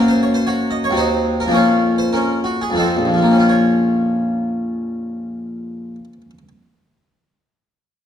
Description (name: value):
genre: classical, baroque-style suite movement for harpsichord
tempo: 82-118 BPM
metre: 3/4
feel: rubato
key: Bb minor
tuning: A4 = 437 Hz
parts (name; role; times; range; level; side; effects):
- harpsichord; solo; 0.0-6.5 s; Bb1 to Eb5; -15 LUFS; equal; none
room: wet recital hall reverb, RT60 1.4 s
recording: dark, warm production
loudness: -15 LUFS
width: side -9 dB against mid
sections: 0.0-3.5 A section; 3.5-7.6 B section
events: slowing down 0.0-3.5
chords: 0.0 Gb; 1.0 Cdim/Eb; 1.5 Bbm/F; 2.8 F7; 3.5 Bbm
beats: 0.47 0.99 | 1.55 2.13 2.78 | 3.49 4.17 4.85 | 5.53 6.22